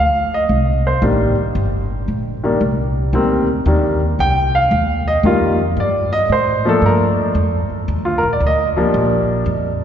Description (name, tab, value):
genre	jazz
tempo	114 BPM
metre	4/4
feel	swing 67% on 8ths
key	unclear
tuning	A4 = 439 Hz
part	warm grand piano	melody	0.0-9.4 s	Eb3 to G5	-16 LUFS	equal	none
part	upright bass	bass	0.0-9.8 s	G1 to A2	-18 LUFS	equal	none
room	wet church reverb, RT60 3.6 s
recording	recorded in a church or concert hall, nothing above 7.6 kHz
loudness	-14 LUFS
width	side -9 dB against mid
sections	0.0-9.8 A section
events	grand piano solo 0.0-9.8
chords	0.0 Cm7; 5.8 Gm7; 7.9 Ebmaj7 (rootless)